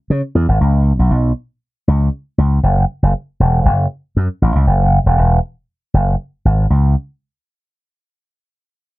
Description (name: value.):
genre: funk.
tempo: 118 BPM.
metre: 4/4.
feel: straight.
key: unclear.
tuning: A4 = 439 Hz.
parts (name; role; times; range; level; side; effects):
slap bass with an envelope filter; solo; 0.1-6.9 s; E1 to C#3; -12 LUFS; equal; none.
room: little or no reverb.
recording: dry, close 1970s-style studio recording.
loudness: -13 LUFS.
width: side -18 dB against mid.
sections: 0.0-6.7 A section; 6.7-8.7 B section.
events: none.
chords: none.